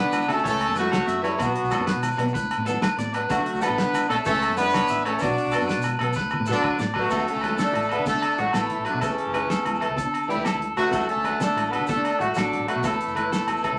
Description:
highlife guitar band; 126 BPM (dotted quarters); 12/8; straight; D major; A4 = 438 Hz
clear horn section; melody; 0.0-13.8 s; C#3 to D5; -27 LUFS; equal
electric guitar at the edge of break-up; arpeggios; 0.0-13.8 s; F#4 to E5; -30 LUFS; equal
fingered electric bass; bass; 0.0-13.8 s; F#1 to D3; -35 LUFS; equal
damped 70s drum kit; drums; 0.1-13.7 s; crash cymbal, hi-hat, kick drum, snare drum, toms; -33 LUFS; equal
agogo bells; percussion; 0.1-13.8 s; -33 LUFS; equal
congas; percussion; 0.1-13.8 s; -37 LUFS; equal
maracas; percussion; 0.1-13.7 s; -47 LUFS; equal
picked steel-string acoustic guitar; accompaniment; 0.3-13.7 s; E3 to F#4; -35 LUFS; equal
wet studio ambience, RT60 0.5 s; vinyl crackle; -24 LUFS; mono
0.0-7.1 A section; 7.1-13.8 B section
drum fill 6.2-7.1
0.5 A; 1.4 Bm; 3.3 D; 4.3 A; 5.2 Bm; 7.1 D; 9.0 A; 10.9 D; 12.8 A

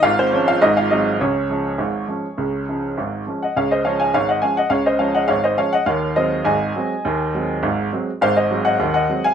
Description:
ragtime piano; 103 BPM; 2/4; straight; Db major; A4 = 440 Hz
clear upright piano; solo; 0.0-9.3 s; Ab1 to Ab5; -17 LUFS; equal
moderate studio reverb, RT60 0.6 s; minimal, uncompressed stereo recording; -17 LUFS; side -8 dB against mid
0.0-3.6 A section; 3.6-9.3 B section
0.0 Db/Ab; 0.6 Ab7; 1.2 Db

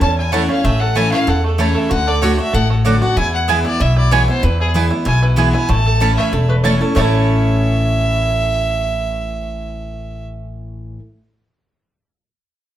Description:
bluegrass; 190 BPM; 4/4; straight; A major; A4 = 442 Hz
bluegrass banjo; melody; 0.0-11.0 s; E3 to A4; -24 LUFS; right 5 dB; plate reverb
rich fiddle; melody; 0.0-10.2 s; G#4 to A5; -21 LUFS; equal; plate reverb
picked steel-string acoustic guitar; accompaniment; 0.0-11.0 s; E2 to F#4; -20 LUFS; left 1 dB
upright bass; bass; 0.0-10.9 s; E1 to E2; -18 LUFS; equal
mandolin; stabs; 0.3-11.0 s; A3 to A5; -22 LUFS; right 5 dB
lap resonator guitar; second line; 6.5-10.9 s; B4 to C#5; -25 LUFS; equal
wet studio reverb, RT60 0.8 s; heard from further back in the room; -13 LUFS; side -12 dB against mid
0.0-7.0 A section; 7.0-9.5 B section
0.0 A; 1.9 D; 3.2 E; 5.7 A

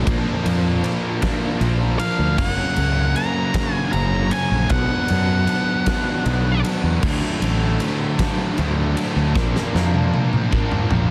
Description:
quiet-loud alternative rock; 52 BPM (dotted quarters); 6/8; straight; A4 = 440 Hz
fuzz guitar; riff; 0.0-11.1 s; F#2 to D4; -31 LUFS; equal; distortion
overdriven semi-hollow guitar; riff; 0.0-11.1 s; F#2 to D4; -28 LUFS; equal
thick fuzz guitar; riff; 0.0-11.1 s; F#2 to D4; -30 LUFS; equal; distortion
fuzz fingered electric bass; bass; 0.0-11.1 s; F#1 to F#2; -23 LUFS; equal; overdrive
huge arena drum kit; drums; 0.1-11.1 s; crash cymbal, kick drum, ride cymbal, snare drum, toms; -26 LUFS; equal
octave-fuzz lead guitar; melody; 2.0-6.6 s; E#5 to A#5; -27 LUFS; equal; distortion, analog delay
small room ambience; dense, heavily limited modern master, vinyl crackle; -20 LUFS; mono
0.0-11.1 A section
drum fill 9.4-11.1
0.1 A#; 2.4 F#; 4.7 Bm; 7.0 D; 9.4 A#

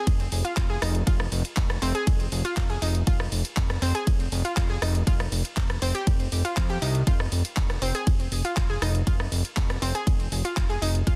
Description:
progressive house; 120 BPM; 4/4; straight; F minor; A4 = 440 Hz
analog pluck; arpeggios; 0.0-11.1 s; C4 to Ab4; -34 LUFS; equal; chorus, sidechain pumping, digital delay
fat analog bass; bass; 0.1-11.2 s; F1 to F2; -29 LUFS; equal; sidechain pumping
electronic kick drum; drums; 0.1-11.2 s; -26 LUFS; equal
house drum kit; drums; 0.1-11.2 s; handclaps, hi-hat, ride cymbal, rim click; -35 LUFS; equal; sidechain pumping on hats, sidechain pumping on cymbals, soft clipping on snare
little or no reverb; dense, heavily limited modern master; -25 LUFS; mono
0.0-11.2 A section
0.0 Fm; 5.1 N.C.; 7.1 Fm

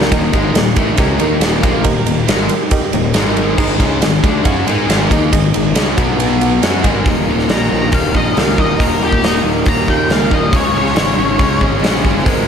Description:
classic rock; 138 BPM; 4/4; straight; A4 = 435 Hz
picked acoustic archtop guitar; accompaniment; 0.0-0.1, 7.1-12.5 s; Ab2 to Ab4; -25 LUFS; right 3 dB
reed electric piano; accompaniment; 0.0-7.0 s; Eb4 to Ab5; -22 LUFS; right 5 dB; overdrive, slapback echo
distorted electric guitar; riff; 0.0-12.5 s; Eb2 to Ab4; -18 LUFS; left 8 dB; distortion
raw garage guitar; riff; 0.0-12.5 s; Eb2 to Ab4; -20 LUFS; right 9 dB; overdrive, spring reverb, slapback echo
fuzz fingered electric bass; bass; 0.0-12.5 s; Eb1 to Ab2; -20 LUFS; equal; overdrive
huge arena drum kit; drums; 0.0-12.4 s; crash cymbal, hi-hat, kick drum, ride cymbal, snare drum; -15 LUFS; equal
octave-fuzz lead guitar; melody; 7.5-11.6 s; Eb4 to Bb5; -20 LUFS; left 2 dB; wah, distortion, slapback echo
moderate lush hall reverb, RT60 1.9 s, small room ambience; big arena sound; -11 LUFS; side -7 dB against mid
0.1-7.1 A section; 7.1-12.5 B section
lead electric guitar solo 7.1-12.5
0.1 Eb; 3.2 Ab5; 6.0 B5; 6.6 Ab5; 7.1 Eb; 10.5 Db

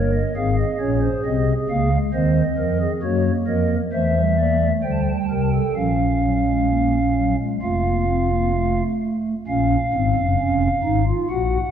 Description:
classical, baroque-style 4-part fugue for pipe organ; 66 BPM; 4/4; straight; Bb minor; A4 = 441 Hz
pipe organ, stopped flute; solo; 0.0-11.7 s; F1 to A5; -18 LUFS; equal
wet concert hall reverb, RT60 1.9 s; dark, warm production; -18 LUFS; side -9 dB against mid
0.0-9.5 A section; 9.5-11.7 B section
0.4 Ab; 2.1 Cm7b5/Eb; 3.9 C7/E; 5.8 Bbm; 7.6 F; 9.5 Bbm

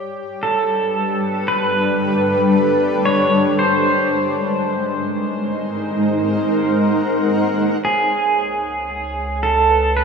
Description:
ambient; 57 BPM; 4/4; straight; A4 = 440 Hz
granular cloud pad; sustained chords; 0.0-10.0 s; G3 to G#5; -18 LUFS; equal; built-in reverb
muted felt-like synth keys; arpeggios; 0.0-10.0 s; B4 to C#5; -35 LUFS; equal; chorus, analog delay
pedal steel guitar; melody; 0.4-10.0 s; G#4 to C#5; -18 LUFS; right 1 dB; analog delay
round analog bass; bass; 7.8-10.0 s; C#2; -25 LUFS; equal
wet lush hall reverb, RT60 3.1 s; dreamy mix soaked in reverb, studio reverb; -16 LUFS; side -5 dB against mid
0.0-7.8 A section; 7.8-10.0 B section
0.0 Gadd9; 3.6 G#7; 7.8 C#m

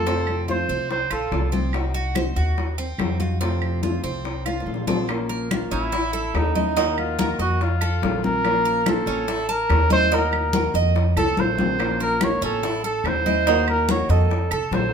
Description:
latin, Cuban son and guajira; 143 BPM; 4/4; straight; Bb minor from 5.1 s; A4 = 440 Hz
trumpet with bucket mute; melody; 0.0-1.5, 5.7-14.9 s; Eb4 to Db5; -23 LUFS; right 1 dB
nylon-string guitar; accompaniment; 0.0-14.9 s; C3 to C5; -28 LUFS; left 3 dB
Cuban tres; arpeggios; 0.0-14.9 s; C4 to A5; -28 LUFS; right 8 dB
upright bass; bass; 0.0-14.9 s; A1 to F2; -25 LUFS; equal
bongos; percussion; 0.1-14.9 s; -30 LUFS; left 4 dB
congas; percussion; 0.1-14.9 s; -29 LUFS; left 3 dB
claves; percussion; 0.3-14.7 s; -34 LUFS; right 7 dB
moderate studio reverb, RT60 0.8 s; minimal, uncompressed stereo recording; -19 LUFS; side -7 dB against mid
0.0-5.1 A section; 5.1-14.9 B section
drum fill 4.5-5.1, 11.2-11.8; muted trumpet solo 5.1-14.9
0.1 F; 1.7 Cdim; 3.4 F; 5.1 Bbmadd9; 5.9 A; 6.8 Ebm; 7.6 F7; 8.4 Bbmadd9; 9.3 A; 10.1 Ebm; 11.0 F7; 11.8 Bbmadd9; 12.6 A; 13.5 Ebm; 14.3 F7

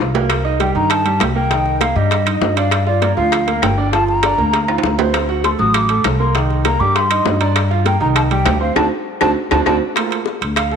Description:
Afro-Cuban jazz; 198 BPM; 4/4; straight; A4 = 438 Hz
bright grand piano; accompaniment; 0.0-10.8 s; Eb3 to F#5; -20 LUFS; right 8 dB
upright bass; bass; 0.0-10.8 s; G1 to G2; -19 LUFS; left 2 dB
bongos; percussion; 0.1-10.8 s; -23 LUFS; left 12 dB
timbales; percussion; 0.1-10.7 s; -22 LUFS; right 9 dB
claves; percussion; 0.3-10.7 s; -28 LUFS; left 14 dB
mellow hollow silver concert flute; melody; 0.6-9.8 s; D5 to Eb6; -19 LUFS; left 2 dB
moderate echo chamber reverb, RT60 1.8 s, small room ambience; 1960s-style stereo with parts hard left and right; -13 LUFS; side -7 dB against mid
0.0-10.0 A section
drum fill 0.0, 4.7-5.1, 8.8-10.0; band accent 8.8-10.0
0.3 Cm7; 2.7 Gm7; 5.1 D7; 6.3 Cm7; 7.6 Gm7; 8.2 Cm; 8.8 D7; 10.0 C9sus4 (rootless)

